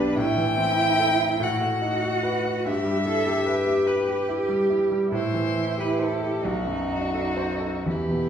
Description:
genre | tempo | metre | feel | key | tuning
classical, slow romantic movement for piano trio | 40-50 BPM (dotted quarters) | 6/8 | rubato | E minor | A4 = 440 Hz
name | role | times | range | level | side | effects
rich violin | melody | 0.0-8.3 s | E4 to G5 | -27 LUFS | left 3 dB | none
warm cello | second line | 0.0-8.3 s | D4 to A4 | -26 LUFS | right 3 dB | none
clear concert grand piano | accompaniment | 0.0-8.3 s | B1 to C5 | -25 LUFS | equal | none
room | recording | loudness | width
wet recital hall reverb, RT60 1.3 s | heard from further back in the room | -22 LUFS | side -8 dB against mid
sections
0.0-8.3 A section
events
none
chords
0.2 Am; 1.4 B7/A; 2.6 Em/G; 5.1 Am7; 6.4 B7b9

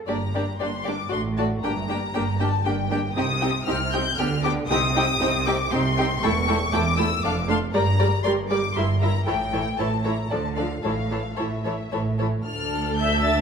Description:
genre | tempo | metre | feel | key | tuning
quick classical-period movement for string orchestra | 117 BPM | 3/4 | rubato | G minor, D minor from 6.2 s | A4 = 441 Hz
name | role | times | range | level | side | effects
warm studio cello section | bass | 0.0-13.4 s | D2 to D3 | -27 LUFS | right 2 dB | none
warm studio violin section | melody | 0.1-13.4 s | E5 to A6 | -27 LUFS | left 4 dB | none
rich studio violin section | second line | 0.1-13.4 s | D4 to G5 | -29 LUFS | left 3 dB | none
rich studio viola section | accompaniment | 0.1-13.4 s | E3 to E5 | -27 LUFS | right 1 dB | none
warm studio double bass section | bass | 0.1-13.4 s | E1 to D2 | -29 LUFS | right 3 dB | none
room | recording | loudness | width
wet recital hall reverb, RT60 1.5 s | minimal, uncompressed stereo recording | -21 LUFS | side -6 dB against mid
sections
0.1-12.5 A section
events
none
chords
0.1 Gm; 1.1 D5/A; 1.6 Gm; 3.2 Cm; 4.2 G7/D; 4.7 Cm; 6.2 A7/E; 7.2 Dm/F; 7.7 Gm; 8.7 Edim/G; 9.3 A7; 10.3 Dm; 10.8 A; 12.5 Dm

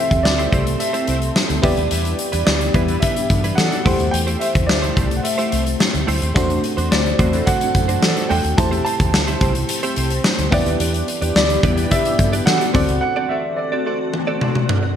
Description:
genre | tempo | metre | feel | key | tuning
1980s-style pop | 108 BPM | 4/4 | straight | unclear | A4 = 441 Hz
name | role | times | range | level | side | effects
warm grand piano | melody | 0.0-14.9 s | D5 to A5 | -23 LUFS | right 1 dB | lush chorus, digital delay
FM electric piano | accompaniment | 0.0-15.0 s | A3 to E5 | -24 LUFS | left 1 dB | chorus, phaser
glassy FM pad | sustained chords | 0.0-15.0 s | D3 to A4 | -28 LUFS | left 2 dB | ensemble chorus, built-in reverb, phaser
direct-recorded clean electric guitar | riff | 0.0-14.9 s | G3 to D5 | -28 LUFS | right 4 dB | analog chorus
vintage muted fingered electric bass | bass | 0.1-13.0 s | C2 to E3 | -22 LUFS | equal | none
big rock drum kit | drums | 0.1-14.8 s | hi-hat, kick drum, snare drum, toms | -19 LUFS | equal | gated reverb
mellow synth brass | stabs | 2.3-12.7 s | G3 to A4 | -28 LUFS | left 2 dB | chorus, digital delay
room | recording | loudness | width
moderate lush hall reverb, RT60 2.1 s | bright 1980s-style digital production | -16 LUFS | side -9 dB against mid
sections
0.0-15.0 A section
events
break 13.0-15.0; drum fill 14.1-15.0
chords
0.0 Am7; 1.6 Em7; 3.9 Am7; 6.4 D7; 8.6 Am7; 10.5 Em7; 12.7 D7

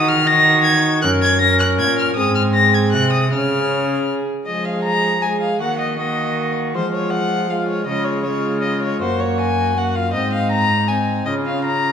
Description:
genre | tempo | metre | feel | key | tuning
classical, renaissance-style consort dance | 158 BPM | 3/4 | straight | unclear | A4 = 440 Hz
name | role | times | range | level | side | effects
warm violin | melody | 0.0-11.9 s | C5 to Bb6 | -19 LUFS | left 3 dB | none
rich viola | second line | 0.0-11.9 s | Eb4 to Bb4 | -24 LUFS | right 4 dB | none
warm trombone | accompaniment | 0.0-11.8 s | Ab3 to Eb4 | -24 LUFS | equal | none
rich cello | bass | 0.0-11.9 s | Gb2 to F3 | -21 LUFS | right 1 dB | none
room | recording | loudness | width
wet recital hall reverb, RT60 1.7 s | recorded in a church or concert hall | -15 LUFS | side -8 dB against mid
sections
0.0-4.5 A section; 4.5-11.9 B section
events
none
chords
0.0 Ebm; 1.0 Gb; 2.2 Ab; 3.3 Db; 4.5 Fm; 5.6 Ebm; 6.7 Fm; 7.9 Db; 9.0 Gb; 10.1 Ab; 11.3 Db

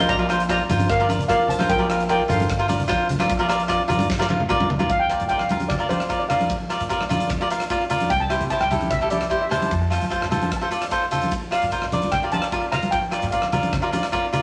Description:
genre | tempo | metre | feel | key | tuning
calypso | 150 BPM | 4/4 | straight | Bb major | A4 = 440 Hz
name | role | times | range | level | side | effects
steel pan | melody | 0.0-14.1 s | A4 to Bb5 | -26 LUFS | equal | none
cavaquinho | accompaniment | 0.0-14.4 s | E4 to F5 | -25 LUFS | equal | none
upright bass | bass | 0.0-14.1 s | G1 to F3 | -30 LUFS | equal | none
congas | percussion | 0.0-14.4 s | none | -29 LUFS | equal | none
huge arena drum kit | drums | 0.1-14.4 s | hi-hat, kick drum, rim click, snare drum, toms | -32 LUFS | equal | none
room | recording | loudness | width
wet studio reverb, RT60 0.7 s | none | -22 LUFS | mono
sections
0.0-4.9 A section; 4.9-14.4 B section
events
drum fill 4.1-4.9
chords
0.0 Bbadd9; 4.9 Bb; 8.1 C; 9.7 F; 11.3 Bb6

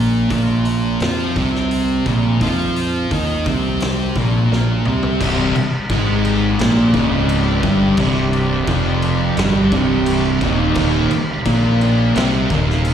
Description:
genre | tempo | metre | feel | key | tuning
stoner and doom metal | 86 BPM | 4/4 | straight | C minor from 5.2 s | A4 = 437 Hz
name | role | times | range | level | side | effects
thick fuzz guitar | riff | 0.0-12.9 s | C2 to F4 | -21 LUFS | left 8 dB | distortion, slapback echo
thick fuzz guitar | riff | 0.0-12.9 s | C2 to F4 | -20 LUFS | right 7 dB | distortion, slapback echo
growling fingered electric bass | bass | 0.0-12.9 s | C1 to F2 | -20 LUFS | equal | overdrive
oversized low-tuned drum kit | drums | 0.3-12.9 s | crash cymbal, hi-hat, kick drum, snare drum, toms | -25 LUFS | equal | none
overtone-sweeping drone | sustained chords | 5.8-12.9 s | C4 to F5 | -29 LUFS | right 1 dB | chorus, built-in reverb
crunchy overdriven guitar | riff | 5.2-12.9 s | C2 to C4 | -21 LUFS | right 1 dB | slapback echo
room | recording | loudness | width
light reverb | live gig heard through the venue's PA, recital hall reverb | -14 LUFS | side -9 dB against mid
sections
0.0-5.2 A section; 5.2-12.9 B section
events
drum fill 4.5-5.2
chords
0.0 Bb5; 5.2 Cm; 10.8 Eb5

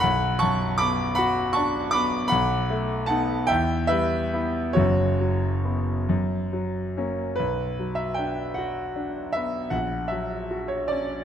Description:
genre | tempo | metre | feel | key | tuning
classical, romantic nocturne for solo piano | 45-54 BPM (dotted quarters) | 6/8 | rubato | B minor | A4 = 440 Hz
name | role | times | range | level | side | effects
clear concert grand piano | solo | 0.0-11.2 s | F#1 to D6 | -22 LUFS | equal | none
room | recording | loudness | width
wet scoring stage reverb, RT60 1.6 s | none | -22 LUFS | side -9 dB against mid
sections
0.0-7.4 A section; 7.4-11.2 B section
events
none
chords
0.0 Bm; 2.3 B7; 3.5 Em; 4.8 F#sus4; 6.1 F#; 7.4 Bm; 9.7 F#/A#

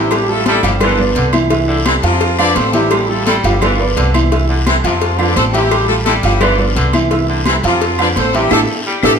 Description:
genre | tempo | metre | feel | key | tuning
latin, salsa | 171 BPM | 4/4 | straight | C major | A4 = 440 Hz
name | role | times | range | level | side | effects
clear horn section | melody | 0.0-9.1 s | E3 to D5 | -16 LUFS | left 2 dB | none
bright saxophone section | second line | 0.0-9.0 s | C3 to G3 | -21 LUFS | left 1 dB | none
clear upright piano | accompaniment | 0.0-9.2 s | E3 to F5 | -18 LUFS | right 3 dB | none
upright bass | bass | 0.0-9.2 s | G1 to F2 | -17 LUFS | equal | none
agogo bells and timbales | percussion | 0.1-9.1 s | none | -23 LUFS | right 7 dB | none
claves | percussion | 0.1-9.1 s | none | -29 LUFS | left 5 dB | none
congas | percussion | 0.1-9.1 s | none | -23 LUFS | left 3 dB | none
cowbell | percussion | 0.1-9.1 s | none | -24 LUFS | left 7 dB | none
guiro | percussion | 0.1-9.1 s | none | -27 LUFS | left 4 dB | none
room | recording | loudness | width
wet large studio reverb, RT60 1.3 s | none | -11 LUFS | side -6 dB against mid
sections
0.0-9.2 A section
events
band accent 8.5-9.2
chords
0.1 A7(no3); 0.8 G7; 1.5 C69; 2.2 Fmaj7; 2.9 A7(no3); 3.6 G7; 4.3 C69; 5.0 Fmaj7; 5.7 A7(no3); 6.4 G7; 7.1 C69; 7.8 Fmaj7; 8.5 A7(no3)

